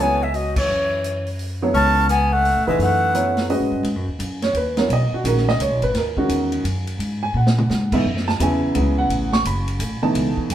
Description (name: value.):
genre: modal jazz.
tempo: 171 BPM.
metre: 3/4.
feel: swing 64% on 8ths.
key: F# dorian, G# phrygian from 3.8 s.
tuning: A4 = 442 Hz.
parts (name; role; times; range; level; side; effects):
breathy bright concert flute; melody; 0.0-3.5 s; C#5 to A5; -20 LUFS; equal; none.
clear tenor saxophone; second line; 0.0-3.5 s; E3 to C#4; -25 LUFS; left 2 dB; none.
warm upright piano; accompaniment; 0.0-10.5 s; B2 to C#6; -21 LUFS; right 2 dB; none.
upright bass; bass; 0.0-10.5 s; F#1 to C#3; -22 LUFS; equal; none.
vintage drum kit; drums; 0.3-10.5 s; crash cymbal, hi-hat, kick drum, ride cymbal, snare drum, toms; -27 LUFS; equal; none.
room: wet stone room reverb, RT60 1.3 s.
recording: band playing live in one room.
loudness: -17 LUFS.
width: side -11 dB against mid.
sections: 0.0-3.8 A section; 3.8-10.5 B section.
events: band accent 0.5; drum fill 7.3-7.7.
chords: 0.0 F#m11; 3.8 G#m9; 8.0 F#m9.